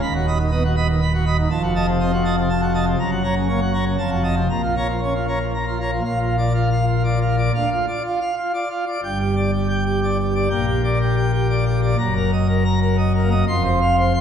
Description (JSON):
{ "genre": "classical, organ toccata", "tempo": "121 BPM", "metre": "3/4", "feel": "straight", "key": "Bb minor", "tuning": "A4 = 441 Hz", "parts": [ { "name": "pipe organ, plenum", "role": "solo", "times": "0.0-14.2 s", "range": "D#1 to C6", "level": "-17 LUFS", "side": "equal", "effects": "none" } ], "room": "wet scoring stage reverb, RT60 1.6 s", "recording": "heard from further back in the room", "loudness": "-18 LUFS", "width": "side -8 dB against mid", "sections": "0.0-6.0 A section; 6.0-14.2 B section", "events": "none", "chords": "0.0 B/D#; 1.5 F7b9; 3.0 Gb; 4.0 F7b9; 4.5 Bbm; 6.0 Bb; 7.5 Dm; 9.0 G5; 10.5 Gm/Bb; 12.0 Ebm/Gb; 13.5 F5" }